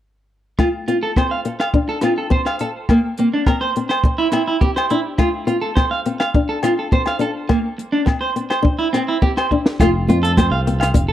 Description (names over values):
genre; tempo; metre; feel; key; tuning
highlife guitar band; 104 BPM; 4/4; straight; F major; A4 = 439 Hz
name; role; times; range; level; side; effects
nylon-string guitar; accompaniment; 0.6-11.0 s; A3 to D4; -22 LUFS; left 5 dB; none
clean electric guitar; arpeggios; 0.6-11.1 s; Bb3 to F5; -20 LUFS; right 2 dB; spring reverb, tape echo
compact cocktail drum kit; drums; 0.6-11.1 s; hi-hat, kick drum, rim click, snare drum; -18 LUFS; equal; none
agogo bells; percussion; 0.6-10.9 s; none; -28 LUFS; left 6 dB; none
fingered electric bass; bass; 9.8-11.1 s; F1 to F2; -18 LUFS; equal; none
congas; percussion; 9.8-11.0 s; none; -21 LUFS; right 4 dB; none
room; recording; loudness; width
light reverb; dry, close 1970s-style studio recording; -16 LUFS; side -12 dB against mid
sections
0.6-9.8 A section; 9.8-11.1 B section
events
drum fill 9.5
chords
0.6 F; 2.9 Bbsus2; 4.0 C; 5.2 F; 7.5 Bbsus2; 8.7 C; 9.8 F